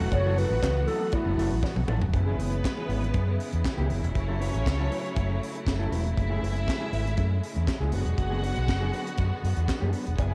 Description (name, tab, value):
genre	disco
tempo	119 BPM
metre	4/4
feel	straight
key	F# minor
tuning	A4 = 443 Hz
part	clear symphonic string section	second line	0.0-10.3 s	B3 to G#5	-39 LUFS	equal	cassette tape
part	mellow electric guitar	accompaniment	0.0-10.3 s	E3 to B4	-38 LUFS	equal	tube saturation, spring reverb, cassette tape
part	clear symphonic string section	sustained chords	0.0-10.3 s	C#3 to F#4	-38 LUFS	equal	cassette tape
part	overdriven fingered electric bass	bass	0.0-10.3 s	E1 to F#2	-29 LUFS	equal	none
part	wooden-headed alto flute	melody	0.1-1.6 s	E4 to C#5	-31 LUFS	equal	cassette tape
part	tight funk drum kit	drums	0.1-10.3 s	handclaps, hi-hat, kick drum, snare drum, toms	-34 LUFS	equal	none
part	cowbell	percussion	0.1-1.8, 10.2-10.3 s	none	-43 LUFS	equal	none
room	light reverb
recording	home recording on cassette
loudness	-27 LUFS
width	mono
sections	0.0-2.1 A section; 2.1-10.3 B section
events	drum fill 1.6-2.1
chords	0.0 F#m7; 2.1 C#m7/F#; 4.2 F#m7; 6.2 Amaj7/F#; 7.9 G#m7b5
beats	| 0.12 0.62 1.13 1.63 | 2.14 2.64 3.15 3.65 | 4.16 4.66 5.16 5.67 | 6.17 6.67 7.17 7.68 | 8.18 8.68 9.18 9.69 | 10.19